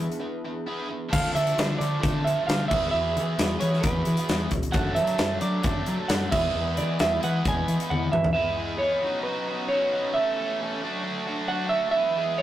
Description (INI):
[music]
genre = indie rock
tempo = 133 BPM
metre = 4/4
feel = straight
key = unclear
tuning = A4 = 441 Hz
[part]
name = hollow soft pad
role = sustained chords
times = 0.0-12.4 s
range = E3 to E5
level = -37 LUFS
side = equal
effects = chorus
[part]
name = distorted electric guitar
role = riff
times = 0.0-12.4 s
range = E3 to A4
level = -31 LUFS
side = equal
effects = overdrive
[part]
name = growling picked electric bass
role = bass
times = 0.0-8.3 s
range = C#2 to F#3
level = -28 LUFS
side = left 1 dB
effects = overdrive
[part]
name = big rock drum kit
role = drums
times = 0.0-8.3 s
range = crash cymbal, hi-hat, kick drum, snare drum, toms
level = -27 LUFS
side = left 1 dB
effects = none
[part]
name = semi-hollow electric guitar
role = melody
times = 1.1-12.4 s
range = B4 to G#5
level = -26 LUFS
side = right 2 dB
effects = none
[sound]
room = wet studio reverb, RT60 0.6 s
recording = rough rehearsal-room recording, tube saturation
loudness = -23 LUFS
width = side -12 dB against mid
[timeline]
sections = 0.0-1.1 A section; 1.1-8.4 B section; 8.4-12.4 C section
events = break 0.2-1.1; drum fill 7.9-8.4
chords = 0.0 E7; 1.1 Dm; 2.7 Eadd9; 4.7 D/F#; 6.3 E; 9.0 Badd9; 10.2 Aadd9; 10.8 D